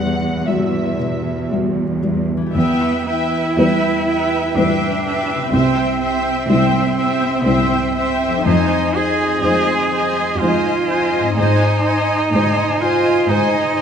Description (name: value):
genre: cinematic, emotional film score for orchestra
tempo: 61 BPM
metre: 3/4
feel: uneven beats, rubato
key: unclear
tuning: A4 = 440 Hz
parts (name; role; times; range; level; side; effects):
- dark studio violin section; melody; 0.0-1.5 s; E5 to F#5; -27 LUFS; left 1 dB; none
- felt-muted upright piano; accompaniment; 0.0-13.8 s; C2 to E5; -21 LUFS; left 2 dB; none
- concert harp; arpeggios; 0.0-13.8 s; F2 to E5; -27 LUFS; left 5 dB; none
- warm symphonic cello section; bass; 0.0-13.8 s; C2 to G#2; -23 LUFS; right 3 dB; none
- rich cello; melody; 2.5-13.8 s; B3 to Ab4; -19 LUFS; right 3 dB; none
- warm symphonic violin section; second line; 2.5-13.8 s; Eb5 to Ab5; -22 LUFS; left 2 dB; none
- rich symphonic viola section; accompaniment; 2.5-13.8 s; B4 to E5; -23 LUFS; right 1 dB; none
room: wet recital hall reverb, RT60 1.6 s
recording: none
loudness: -15 LUFS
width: side -7 dB against mid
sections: 0.0-2.6 A section; 2.6-13.8 B section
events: none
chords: 0.0 Emadd9; 2.6 Em; 5.5 C; 8.5 Fm7; 11.4 G#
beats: 0.47 1.50 | 2.55 3.58 4.56 | 5.53 6.49 7.45 | 8.45 9.44 10.40 | 11.37 12.33 13.29